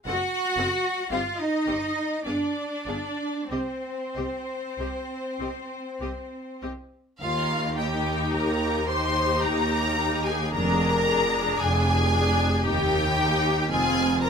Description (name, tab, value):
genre	classical, slow romantic movement for string orchestra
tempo	45-61 BPM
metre	3/4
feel	rubato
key	C minor, Eb major from 7.2 s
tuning	A4 = 439 Hz
part	clear symphonic violin section	melody	0.1-14.3 s	D#5 to C6	-28 LUFS	left 1 dB	none
part	clear symphonic violin section	second line	0.1-14.3 s	F4 to F#5	-30 LUFS	left 2 dB	none
part	clear symphonic viola section	accompaniment	0.1-14.3 s	B3 to A4	-28 LUFS	left 2 dB	none
part	clear symphonic double bass section	bass	0.1-14.3 s	F1 to Eb2	-29 LUFS	right 2 dB	none
part	rich symphonic cello section	bass	0.1-14.3 s	Eb2 to F#4	-29 LUFS	right 2 dB	none
room	moderate studio reverb, RT60 0.7 s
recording	minimal, uncompressed stereo recording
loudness	-23 LUFS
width	side -6 dB against mid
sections	0.0-7.2 A section; 7.2-14.3 B section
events	none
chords	0.1 F#(b5, no3); 1.1 Cm (rootless); 2.3 N.C.; 7.2 Eb; 10.5 Bb7/F; 12.6 Eb; 13.7 F5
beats	| 0.07 1.12 2.26 | 3.51 4.80 6.02 | 7.22 8.33 9.43 | 10.54 11.59 12.64 | 13.71